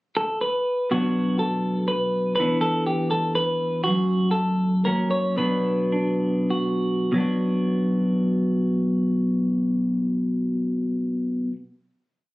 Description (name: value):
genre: folk, solo fingerstyle acoustic guitar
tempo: 92-123 BPM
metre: 3/4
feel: straight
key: B minor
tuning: A4 = 440 Hz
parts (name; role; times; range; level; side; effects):
- semi-hollow electric guitar; solo; 0.2-11.6 s; F#2 to C#5; -21 LUFS; equal; none
room: light reverb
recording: recorded on a phone in the room, club reverb, compression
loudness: -21 LUFS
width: side -19 dB against mid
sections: 0.0-0.9 pickup bar; 0.9-7.1 A section; 7.1-11.0 final chord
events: slowing down 3.9-7.1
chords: 0.0 N.C.; 0.9 Bm; 2.4 E5; 3.9 N.C.; 4.9 F#; 5.4 Bm